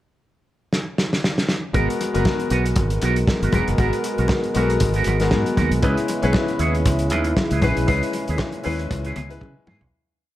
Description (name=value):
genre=disco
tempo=117 BPM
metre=4/4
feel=swing 56% on 16ths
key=G# minor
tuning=A4 = 440 Hz
part: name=warm soul drum kit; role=drums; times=0.7-9.9 s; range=hi-hat, kick drum, snare drum, toms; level=-23 LUFS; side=equal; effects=none
part: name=clear concert grand piano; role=accompaniment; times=1.7-9.9 s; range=G#3 to B4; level=-25 LUFS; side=left 3 dB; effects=none
part: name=electric guitar with an envelope filter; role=accompaniment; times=1.7-9.9 s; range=B3 to C#5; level=-28 LUFS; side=right 5 dB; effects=analog chorus
part: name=mellow French horn section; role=sustained chords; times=1.7-9.9 s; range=A#2 to A#4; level=-27 LUFS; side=equal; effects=none
part: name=fingered electric bass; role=bass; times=1.7-9.9 s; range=E1 to C#3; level=-22 LUFS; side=right 1 dB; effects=none
part: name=congas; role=percussion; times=2.0-9.8 s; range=none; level=-30 LUFS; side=left 3 dB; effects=none
room=light reverb, small room ambience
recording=none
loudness=-18 LUFS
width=side -14 dB against mid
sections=0.0-1.7 pickup bar; 1.7-9.9 groove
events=drum fill 0.7-1.7, 9.4-9.9; fade-out 7.9-9.9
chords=0.0 N.C.; 1.7 G#m9; 5.8 C#m7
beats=0.21 0.72 1.23 | 1.74 2.25 2.76 3.27 | 3.78 4.29 4.80 5.32 | 5.83 6.34 6.86 7.37 | 7.88 8.39 8.90 9.41